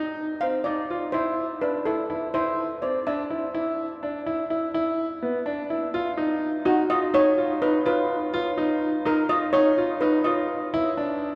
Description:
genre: progressive instrumental, progressive.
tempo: 250 BPM (eighths).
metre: 5/8.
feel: straight.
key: unclear.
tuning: A4 = 438 Hz.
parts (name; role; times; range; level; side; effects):
bright concert grand piano; arpeggios; 0.0-11.3 s; B3 to F4; -27 LUFS; equal; none.
steel pan; melody; 0.4-3.4, 6.7-10.6 s; F#4 to F5; -27 LUFS; equal; none.
room: wet cathedral reverb, RT60 4.9 s.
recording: recorded in a church or concert hall.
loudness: -25 LUFS.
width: mono.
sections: 0.0-5.9 A section; 5.9-11.4 B section.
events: none.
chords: 0.0 Cm; 1.1 Am (rootless); 3.5 Dsus2; 4.7 E5; 5.9 D#sus2; 10.7 Dsus2.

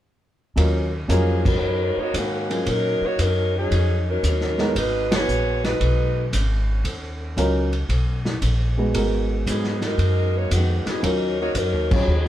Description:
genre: jazz, big band swing.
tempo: 115 BPM.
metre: 4/4.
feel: swing 69% on 8ths.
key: Eb minor.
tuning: A4 = 439 Hz.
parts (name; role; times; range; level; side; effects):
dark baby grand piano; accompaniment; 0.6-12.1 s; Gb3 to Db5; -24 LUFS; equal; none.
upright bass; bass; 0.6-12.3 s; Ab1 to Bb2; -22 LUFS; equal; none.
vintage drum kit; drums; 0.6-12.3 s; crash cymbal, hi-hat, kick drum, ride cymbal, snare drum; -27 LUFS; equal; none.
mellow saxophone section; melody; 1.1-6.3, 9.5-12.3 s; Eb3 to Db5; -23 LUFS; left 1 dB; none.
room: moderate small room reverb, RT60 0.5 s.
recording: band playing live in one room.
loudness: -19 LUFS.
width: side -12 dB against mid.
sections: 0.6-12.3 A section.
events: band accent 1.3, 5.0, 11.8.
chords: 0.6 Ebm7; 4.7 Abm7; 6.8 Ebm7; 8.9 Abm7; 11.0 Ebm7.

